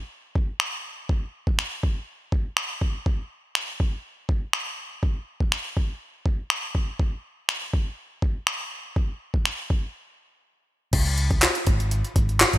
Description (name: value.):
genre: dance-pop.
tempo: 122 BPM.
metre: 4/4.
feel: straight.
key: unclear.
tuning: A4 = 438 Hz.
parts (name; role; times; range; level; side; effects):
jungle sampler-style drum kit; drums; 0.4-12.6 s; crash cymbal, finger snaps, handclaps, hi-hat, kick drum, snare drum; -22 LUFS; equal; overdrive, gated reverb.
vintage muted fingered electric bass; bass; 10.9-12.6 s; Ab1 to Db2; -23 LUFS; equal; sidechain pumping.
room: little or no reverb.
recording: bright 1980s-style digital production.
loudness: -24 LUFS.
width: side -15 dB against mid.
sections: 0.0-10.9 A section; 10.9-12.6 B section.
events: break 9.9-10.9.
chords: none.